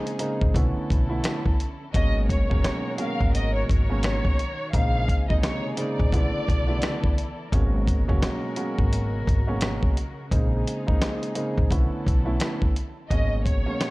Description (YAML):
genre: hip hop, boom-bap hip-hop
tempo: 86 BPM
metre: 4/4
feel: swing 59% on 16ths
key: unclear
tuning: A4 = 441 Hz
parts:
  - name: dark concert grand piano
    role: accompaniment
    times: 0.0-13.9 s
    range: B2 to E4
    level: -29 LUFS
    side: right 1 dB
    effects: high-pass filter, low-pass filter
  - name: warm chamber string section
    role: sustained chords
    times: 0.0-13.1 s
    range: B2 to A#4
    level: -38 LUFS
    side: left 1 dB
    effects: high-pass filter, low-pass filter
  - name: dusty soul sampler-style drum kit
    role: drums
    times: 0.1-13.9 s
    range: hi-hat, kick drum, rim click, snare drum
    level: -24 LUFS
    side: equal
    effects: none
  - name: upright bass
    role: bass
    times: 0.4-13.6 s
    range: F#1 to B1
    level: -26 LUFS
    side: equal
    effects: none
  - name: warm studio violin section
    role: melody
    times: 1.9-7.5, 13.1-13.9 s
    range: C#5 to E#5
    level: -30 LUFS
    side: left 1 dB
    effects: high-pass filter, low-pass filter, slapback echo
room: small room ambience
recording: dark, warm production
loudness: -22 LUFS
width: side -21 dB against mid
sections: 0.0-13.1 A section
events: none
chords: 0.0 A#m11; 0.5 Bm11; 1.9 G#m11; 4.7 A#m11; 6.1 Bm11; 7.5 G#m11; 10.3 A#m11; 11.7 Bm11; 13.1 G#m11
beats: 0.55 1.25 | 1.94 2.64 3.34 4.04 | 4.74 5.43 6.13 6.83 | 7.53 8.22 8.92 9.62 | 10.32 11.01 11.71 12.41 | 13.11 13.80